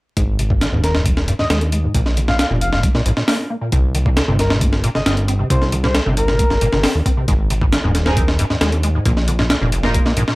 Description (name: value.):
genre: breakbeat, breaks.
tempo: 135 BPM.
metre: 4/4.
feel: straight.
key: unclear.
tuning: A4 = 440 Hz.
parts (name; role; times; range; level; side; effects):
deep acid bass; riff; 0.2-10.3 s; Ab1 to C4; -22 LUFS; equal; wide subtle chorus, digital delay.
fat analog bass; bass; 0.2-10.2 s; Eb1 to Bb2; -19 LUFS; equal; none.
breakbeat sampler-style drum kit; drums; 0.2-10.4 s; hi-hat, kick drum, snare drum; -18 LUFS; equal; none.
breathy flute-like synth lead; melody; 0.8-6.8 s; Bb4 to F5; -24 LUFS; left 1 dB; chorus, telephone sound, digital delay.
warm symphonic string section; stabs; 8.1-9.9 s; Bb3 to Bb4; -24 LUFS; right 2 dB; vintage 12-bit sampler grit, digital delay.
room: light reverb.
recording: vinyl crackle.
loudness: -14 LUFS.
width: side -21 dB against mid.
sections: 0.2-10.4 A section.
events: none.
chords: 0.2 Ab5; 1.9 Bb5; 3.7 C5; 7.3 Ab5; 9.1 Bb5.